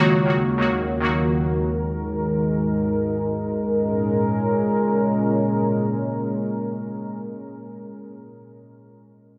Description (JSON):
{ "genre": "hip hop", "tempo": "free time", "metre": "none", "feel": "none", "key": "Bb minor", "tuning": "A4 = 442 Hz", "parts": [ { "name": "glassy digital keys", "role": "accompaniment", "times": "0.0-1.7 s", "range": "Eb3 to Gb4", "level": "-22 LUFS", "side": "equal", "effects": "chorus" }, { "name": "deep dark ambient pad", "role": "sustained chords", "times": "0.0-7.3 s", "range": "Eb2 to Bb4", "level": "-24 LUFS", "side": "equal", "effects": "chorus, built-in reverb" } ], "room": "moderate concert hall reverb, RT60 2.0 s", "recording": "none", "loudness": "-22 LUFS", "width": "mono", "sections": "0.0-3.3 A section; 3.3-6.7 B section", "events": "none", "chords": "0.0 Ebm; 1.7 Absus2; 3.3 Bbm7" }